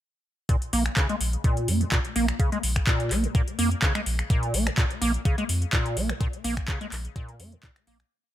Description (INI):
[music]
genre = acid house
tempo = 126 BPM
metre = 4/4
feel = swing 53% on 16ths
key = Bb minor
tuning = A4 = 443 Hz
[part]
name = liquid acid bass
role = riff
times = 0.5-8.0 s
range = Bb2 to Bb3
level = -28 LUFS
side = right 1 dB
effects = overdrive, analog chorus, sidechain pumping, ping-pong delay
[part]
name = electro analog drum machine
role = drums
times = 0.5-8.1 s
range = finger snaps, handclaps, hi-hat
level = -29 LUFS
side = equal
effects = overdrive
[part]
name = electronic kick drum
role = drums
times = 0.5-7.7 s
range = none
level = -24 LUFS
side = equal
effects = none
[part]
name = warm sub bass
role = bass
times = 0.7-8.0 s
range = Bb1 to F2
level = -27 LUFS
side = equal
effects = sidechain pumping
[sound]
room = digital ambience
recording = none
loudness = -23 LUFS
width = side -12 dB against mid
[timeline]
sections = 0.5-8.1 groove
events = fade-out 5.6-8.1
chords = none